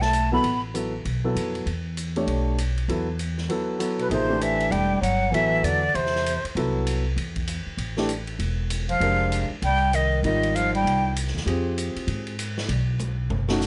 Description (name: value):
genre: modal jazz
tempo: 196 BPM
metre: 4/4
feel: swing 61% on 8ths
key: E dorian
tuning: A4 = 440 Hz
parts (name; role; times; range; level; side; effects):
- breathy concert flute; melody; 0.0-0.6, 4.0-6.4, 8.9-11.1 s; B4 to B5; -26 LUFS; equal; none
- warm bass clarinet; second line; 0.0-0.6, 4.0-6.4, 8.9-11.1 s; B2 to B3; -31 LUFS; equal; none
- upright bass; bass; 0.0-13.7 s; E1 to Ab2; -29 LUFS; equal; none
- swinging big-band drum kit; drums; 0.0-13.7 s; hi-hat, kick drum, ride cymbal, snare drum, toms; -37 LUFS; equal; none
- warm grand piano; accompaniment; 0.3-13.6 s; Eb3 to C#5; -30 LUFS; equal; none
room: light reverb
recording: nothing above 10.9 kHz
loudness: -25 LUFS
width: mono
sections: 0.0-4.1 A section; 4.1-13.7 B section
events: drum fill 13.0-13.6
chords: 0.0 Esus4; 4.1 Am9; 9.0 Fm9; 12.7 B5